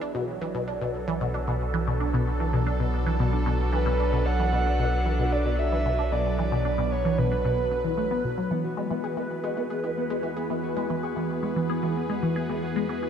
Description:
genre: ambient, sequencer-driven space music.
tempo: 113 BPM.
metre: 4/4.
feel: straight.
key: B dorian.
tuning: A4 = 440 Hz.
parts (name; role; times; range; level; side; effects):
phased analog pad; sustained chords; 0.0-13.1 s; E3 to B4; -31 LUFS; right 1 dB; phaser, chorus.
resonant blip pluck; riff; 0.0-13.1 s; B2 to G#4; -28 LUFS; equal; phaser, wide subtle chorus, tape echo.
round analog bass; bass; 0.0-13.1 s; B1 to E2; -29 LUFS; equal; none.
breathy flute-like synth lead; melody; 3.7-8.2 s; B4 to F#5; -29 LUFS; right 1 dB; chorus, tape echo.
Celtic harp; arpeggios; 8.5-13.1 s; B3 to F#4; -32 LUFS; left 6 dB; auto-pan, tape echo.
room: moderate lush hall reverb, RT60 3.2 s.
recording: dark, warm production.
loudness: -24 LUFS.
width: side -8 dB against mid.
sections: 0.0-8.5 A section; 8.5-13.1 B section.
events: none.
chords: 0.0 Bm7; 8.5 E.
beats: | 0.01 0.55 1.08 1.61 | 2.14 2.67 3.20 3.73 | 4.26 4.79 5.32 5.86 | 6.39 6.92 7.45 7.98 | 8.51 9.04 9.57 10.10 | 10.63 11.16 11.70 12.23 | 12.76.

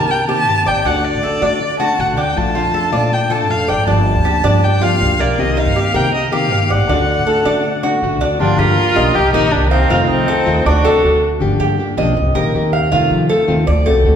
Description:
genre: latin.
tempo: 159 BPM.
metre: 4/4.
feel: straight.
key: G minor.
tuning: A4 = 440 Hz.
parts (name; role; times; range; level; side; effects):
warm violin; melody; 0.0-11.2 s; C4 to A5; -18 LUFS; left 1 dB; none.
nylon-string guitar; accompaniment; 0.0-14.2 s; C3 to G4; -19 LUFS; left 3 dB; none.
Cuban tres; arpeggios; 0.0-14.2 s; Bb3 to F5; -18 LUFS; right 2 dB; none.
upright bass; bass; 0.0-14.2 s; G1 to F3; -18 LUFS; equal; none.
clear trumpet; second line; 8.4-11.2 s; Eb4 to Bb4; -21 LUFS; right 5 dB; none.
room: wet recital hall reverb, RT60 1.6 s.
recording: recorded in a church or concert hall.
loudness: -12 LUFS.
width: side -8 dB against mid.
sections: 0.0-8.4 A section; 8.4-14.2 B section.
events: none.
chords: 0.0 Cm7; 0.8 D; 2.4 Bbmaj7; 3.9 Gm7; 5.4 Cm7; 6.9 D; 8.4 Gm7; 9.2 Cm7; 9.9 F7; 10.7 D7; 11.4 Gm7; 12.2 Cm7; 12.9 F7.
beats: 0.09 0.47 | 0.85 1.23 1.61 1.98 | 2.36 2.74 3.12 3.49 | 3.87 4.25 4.63 5.00 | 5.38 5.76 6.14 6.51 | 6.89 7.27 7.64 8.02 | 8.40 8.78 9.15 9.53 | 9.90 10.28 10.66 11.04 | 11.41 11.79 12.17 12.54 | 12.92 13.30 13.67 14.05.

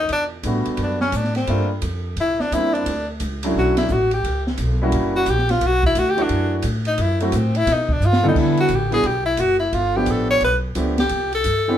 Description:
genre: jazz, small-group swing and bop.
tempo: 174 BPM.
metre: 4/4.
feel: swing 65% on 8ths.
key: unclear.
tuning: A4 = 444 Hz.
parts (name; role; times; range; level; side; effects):
breathy tenor saxophone; melody; 0.0-11.8 s; A3 to C#5; -20 LUFS; left 1 dB; none.
upright bass; bass; 0.0-11.8 s; F#1 to B2; -23 LUFS; equal; none.
open jazz drum kit; drums; 0.1-11.6 s; crash cymbal, hi-hat, kick drum, ride cymbal, snare drum, toms; -26 LUFS; right 1 dB; none.
warm concert grand piano; accompaniment; 0.5-11.8 s; E3 to C#5; -22 LUFS; right 1 dB; none.
room: wet small room ambience, RT60 0.5 s.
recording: band playing live in one room.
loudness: -17 LUFS.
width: side -10 dB against mid.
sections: 0.0-8.4 A section; 8.4-11.8 A section.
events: tenor saxophone solo 0.0-11.8; drum fill 8.0-8.4.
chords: 0.1 Em11; 1.5 Gm7; 2.2 C9; 2.9 Dmaj7; 4.2 C#m7b5; 4.9 F#7b9; 5.6 Bm11; 7.0 F#m7b5; 7.7 G7b13; 8.4 Em9; 9.7 G9; 11.1 Cmaj9.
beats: | 0.10 0.44 0.79 1.13 | 1.48 1.82 2.16 2.51 | 2.85 3.20 3.54 3.88 | 4.23 4.57 4.92 5.26 | 5.61 5.95 6.29 6.64 | 6.98 7.32 7.67 8.01 | 8.36 8.70 9.04 9.39 | 9.73 10.07 10.42 10.76 | 11.11 11.45.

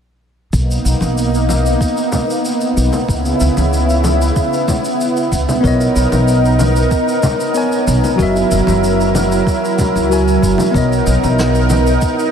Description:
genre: sunset chillout.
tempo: 94 BPM.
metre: 4/4.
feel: straight.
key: B major.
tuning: A4 = 445 Hz.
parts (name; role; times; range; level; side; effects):
lush unison pad; sustained chords; 0.5-12.3 s; C#3 to A#4; -16 LUFS; right 1 dB; chorus.
upright bass; bass; 0.5-11.9 s; F#1 to C#2; -16 LUFS; equal; none.
electronic kick drum; drums; 0.5-12.2 s; none; -17 LUFS; equal; none.
shaker and snare drum; drums; 0.5-12.3 s; none; -27 LUFS; equal; none.
congas; percussion; 1.0-11.8 s; none; -24 LUFS; left 2 dB; none.
tine electric piano; accompaniment; 5.6-12.3 s; F#3 to G#5; -16 LUFS; equal; auto-pan, tape echo.
room: moderate huge ambient reverb, RT60 8.3 s.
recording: dreamy mix soaked in reverb.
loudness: -12 LUFS.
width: side -7 dB against mid.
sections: 0.5-12.3 A section.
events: none.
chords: 0.5 Bmaj7; 3.1 C#m7; 5.6 Bmaj9; 8.2 F#7; 10.7 Bmaj9.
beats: | 0.53 1.17 1.81 2.45 | 3.09 3.72 4.36 5.00 | 5.64 6.28 6.92 7.55 | 8.19 8.83 9.47 10.11 | 10.75 11.38 12.02.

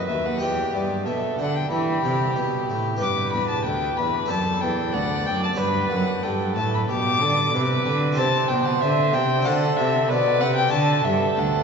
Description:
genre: classical, baroque-style sonata movement with continuo.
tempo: 93 BPM.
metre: 4/4.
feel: straight.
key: unclear.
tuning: A4 = 438 Hz.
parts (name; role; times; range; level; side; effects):
warm violin; melody; 0.0-11.6 s; D5 to D6; -24 LUFS; left 4 dB; none.
dark violin; second line; 0.0-11.6 s; G4 to D5; -26 LUFS; right 4 dB; none.
harpsichord; accompaniment; 0.0-11.6 s; D2 to D5; -28 LUFS; equal; none.
rich cello; bass; 0.0-11.6 s; D2 to E3; -25 LUFS; right 1 dB; none.
room: wet cathedral reverb, RT60 6.5 s.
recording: recorded in a church or concert hall, nothing above 7.9 kHz.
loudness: -20 LUFS.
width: side -5 dB against mid.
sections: 0.0-11.6 A section.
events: none.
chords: 0.4 Em; 3.0 G; 4.3 D7; 5.6 G; 8.2 C; 9.5 D; 10.7 D7.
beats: | 0.42 1.06 1.71 2.36 | 3.01 3.66 4.30 4.94 | 5.59 6.24 6.89 7.54 | 8.18 8.82 9.46 10.09 | 10.73 11.37.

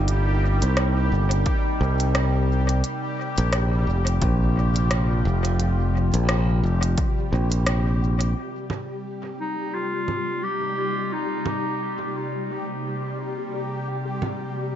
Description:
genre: ambient dub.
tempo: 87 BPM.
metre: 4/4.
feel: swing 57% on 16ths.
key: C minor.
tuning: A4 = 439 Hz.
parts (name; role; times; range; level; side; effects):
warbly tape-like pad; sustained chords; 0.0-14.8 s; C3 to Bb4; -30 LUFS; left 1 dB; chorus, built-in reverb, phaser.
modern bright fingered electric bass; bass; 0.0-8.3 s; F1 to C2; -20 LUFS; equal; none.
bubbling stepped-filter texture; texture; 0.0-14.8 s; G3 to G4; -31 LUFS; left 1 dB; chorus, built-in reverb.
organic electronic drum kit; drums; 0.1-14.4 s; congas, hi-hat, rim click; -29 LUFS; right 1 dB; dub echo.
electronic kick drum; drums; 1.5-7.1 s; none; -25 LUFS; equal; overdrive.
warm clarinet; melody; 9.4-12.5 s; Eb4 to G4; -28 LUFS; equal; dub echo.
room: little or no reverb.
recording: echo-heavy mix, nothing above 7.8 kHz.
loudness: -21 LUFS.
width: side -10 dB against mid.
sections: 0.0-8.4 A section; 8.4-14.8 B section.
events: none.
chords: 0.0 Cm7; 2.8 Bbsus2; 8.4 Cm7.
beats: | 0.08 0.77 1.46 2.15 | 2.84 3.53 4.22 4.91 | 5.60 6.29 6.98 7.67 | 8.36 9.05 9.74 10.43 | 11.12 11.81 12.50 13.19 | 13.88 14.57.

